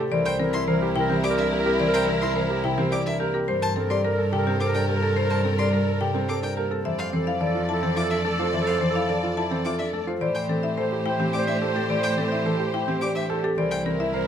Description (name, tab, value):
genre	classical, minimalist pattern music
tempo	107 BPM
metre	3/4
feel	straight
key	F major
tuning	A4 = 440 Hz
part	marimba with hard mallets	melody	0.0-14.3 s	G4 to A5	-28 LUFS	left 6 dB	none
part	concert harp	accompaniment	0.0-14.3 s	C3 to C4	-29 LUFS	equal	none
part	dark grand piano	arpeggios	0.0-14.3 s	C4 to C5	-29 LUFS	right 5 dB	none
part	warm clarinet	second line	0.1-14.3 s	A4 to C5	-30 LUFS	right 4 dB	none
part	rich symphonic violin section	sustained chords	0.1-14.3 s	E4 to D5	-31 LUFS	left 2 dB	none
part	warm cello	bass	0.1-14.3 s	C2 to A2	-30 LUFS	right 3 dB	none
part	rich violin	arpeggios	0.3-13.8 s	E5 to D6	-32 LUFS	left 2 dB	none
room	light reverb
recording	none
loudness	-21 LUFS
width	side -8 dB against mid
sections	0.0-14.3 A section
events	none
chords	0.1 C7; 3.5 Gmadd9; 6.8 F6; 10.2 Am7; 13.6 C7